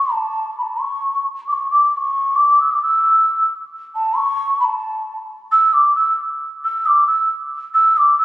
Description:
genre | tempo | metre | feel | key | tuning
indian classical | 134 BPM | 3/4 | straight | E raga bageshri | A4 = 440 Hz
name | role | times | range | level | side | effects
mellow hollow bansuri | solo | 0.0-8.2 s | A5 to E6 | -14 LUFS | equal | none
room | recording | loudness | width
wet concert hall reverb, RT60 2.4 s | recorded on a phone in the room, club reverb, compression | -14 LUFS | side -17 dB against mid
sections
0.0-8.2 A section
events
speeding up 0.0-8.2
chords
none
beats
| 0.11 0.56 1.02 | 1.47 1.92 2.38 | 2.83 3.28 3.73 | 4.17 4.62 5.07 | 5.51 5.96 6.40 | 6.84 7.29 7.73 | 8.17

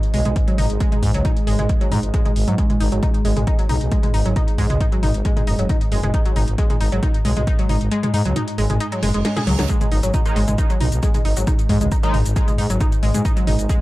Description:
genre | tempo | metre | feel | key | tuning
driving peak-time techno | 135 BPM | 4/4 | straight | unclear | A4 = 440 Hz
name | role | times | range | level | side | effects
analog drone | drone | 0.0-13.8 s | G#2 to G#3 | -28 LUFS | equal | chorus, sidechain pumping
techno drum kit | drums | 0.0-13.8 s | hi-hat, shaker, snare drum, toms | -28 LUFS | right 1 dB | sidechain pumping on hats, sidechain pumping on cymbals, sidechain pumping on toms, sidechain pumping on perc
analog pluck | riff | 0.1-13.8 s | F#3 to G#4 | -24 LUFS | equal | chorus, overdrive, sidechain pumping, tape echo
growling FM bass | bass | 0.1-13.7 s | F#1 to G#2 | -20 LUFS | equal | tube saturation, sidechain pumping
electronic kick drum | drums | 0.4-13.8 s | none | -19 LUFS | equal | none
reverse cymbal | sound effects | 9.0-9.7 s | none | -33 LUFS | right 6 dB | none
sync-sweep polysynth | stabs | 10.3-12.1 s | D#3 to D#4 | -29 LUFS | equal | chorus, sidechain pumping, tape echo
room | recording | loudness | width
light reverb | echo-heavy mix | -16 LUFS | side -18 dB against mid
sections
0.0-9.7 A section; 9.7-13.8 B section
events
kick drops out 7.9-9.7; reverse cymbal 9.0-9.7; drum fill 9.2-9.7; drop 9.7-13.8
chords
0.0 G#5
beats
0.36 | 0.81 1.25 1.69 2.14 | 2.58 3.03 3.47 3.92 | 4.36 4.80 5.25 5.69 | 6.14 6.58 7.03 7.47 | 7.92 8.36 8.80 9.25 | 9.69 10.14 10.58 11.03 | 11.47 11.92 12.36 12.80 | 13.25 13.69

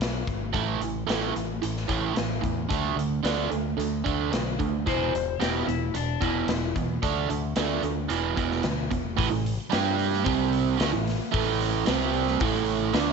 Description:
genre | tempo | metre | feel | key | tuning
classic rock | 111 BPM | 4/4 | straight | unclear | A4 = 439 Hz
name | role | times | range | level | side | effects
growling fingered electric bass | bass | 0.0-13.1 s | E1 to G2 | -31 LUFS | left 3 dB | overdrive
big rock drum kit | drums | 0.0-13.1 s | hi-hat, kick drum, snare drum | -30 LUFS | left 3 dB | none
biting overdriven guitar | riff | 0.5-13.1 s | E2 to G4 | -26 LUFS | right 10 dB | none
electric slide guitar | second line | 4.9-6.7 s | D4 to C5 | -29 LUFS | left 14 dB | none
room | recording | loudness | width
little or no reverb | 1960s-style stereo with parts hard left and right, nothing above 7.9 kHz | -24 LUFS | side -5 dB against mid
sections
0.0-9.2 A section; 9.2-13.1 B section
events
none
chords
0.0 G#m; 0.5 A5; 2.7 D5; 4.9 E5; 7.0 D5; 8.1 E5; 9.2 A5; 9.7 G5; 10.3 C5; 10.8 A5; 11.9 C5; 12.4 A5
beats
0.00 | 0.54 1.08 1.62 2.16 | 2.70 3.24 3.79 4.33 | 4.87 5.41 5.95 6.49 | 7.03 7.57 8.11 8.65 | 9.19 9.72 10.26 10.80 | 11.34 11.88 12.41 12.95

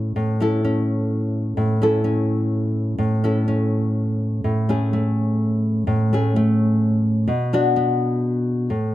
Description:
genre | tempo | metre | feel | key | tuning
folk, solo fingerstyle acoustic guitar | 127 BPM | 3/4 | rubato | A major | A4 = 439 Hz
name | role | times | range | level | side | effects
nylon-string guitar | solo | 0.0-8.9 s | A2 to A4 | -18 LUFS | equal | none
room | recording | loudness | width
light reverb | close, detailed microphones | -18 LUFS | side -14 dB against mid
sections
0.0-8.9 A section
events
none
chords
0.0 A; 4.4 Amaj7; 7.3 Bm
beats
| 0.16 0.63 1.10 | 1.58 2.05 2.52 | 2.99 3.47 3.96 | 4.44 4.92 5.40 | 5.88 6.35 6.81 | 7.28 7.75 8.22 | 8.69

